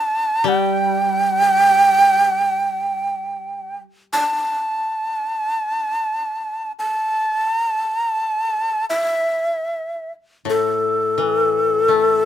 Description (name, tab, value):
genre	japanese traditional, Japanese chamber music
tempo	free time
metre	none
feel	none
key	unclear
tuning	A4 = 439 Hz
part	breathy long shakuhachi	melody	0.0-12.3 s	A4 to A5	-17 LUFS	right 1 dB	none
part	koto	accompaniment	0.4-3.8, 10.5-12.3 s	A2 to A3	-24 LUFS	left 3 dB	none
room	light reverb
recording	close, detailed microphones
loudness	-17 LUFS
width	side -11 dB against mid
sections	0.0-12.3 A section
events	slowing down 10.3-12.3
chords	none